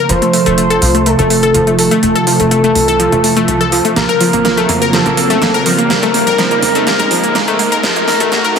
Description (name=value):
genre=progressive house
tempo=124 BPM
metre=4/4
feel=straight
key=Bb harmonic minor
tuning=A4 = 440 Hz
part: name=expressive portamento lead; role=melody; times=0.0-8.6 s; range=A4 to C5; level=-15 LUFS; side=equal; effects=wide subtle chorus, dub echo
part: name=warm analog pad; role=sustained chords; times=0.0-8.6 s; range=Bb2 to A4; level=-17 LUFS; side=right 2 dB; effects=chorus
part: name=analog pluck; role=arpeggios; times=0.0-8.6 s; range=F3 to Bb4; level=-15 LUFS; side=left 2 dB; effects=chorus, dub echo
part: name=riser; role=sound effects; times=0.0-8.6 s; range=none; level=-21 LUFS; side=right 1 dB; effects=none
part: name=tight sequencer bass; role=bass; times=0.1-8.6 s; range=F1 to F2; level=-21 LUFS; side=equal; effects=none
part: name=big-room dance drum kit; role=drums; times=0.1-8.6 s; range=hi-hat, snare drum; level=-17 LUFS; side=right 1 dB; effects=none
room=moderate lush hall reverb, RT60 2.0 s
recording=dense, heavily limited modern master, high-pass filter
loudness=-9 LUFS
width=side -6 dB against mid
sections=0.0-8.6 A section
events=build-up 0.0-8.6; riser 0.0-8.6; filter sweep on analog synth pad 0.0-8.6; filter sweep 0.0-8.6; drum fill 4.0-8.6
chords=0.1 F; 4.0 Bbmadd9; 7.8 Ebm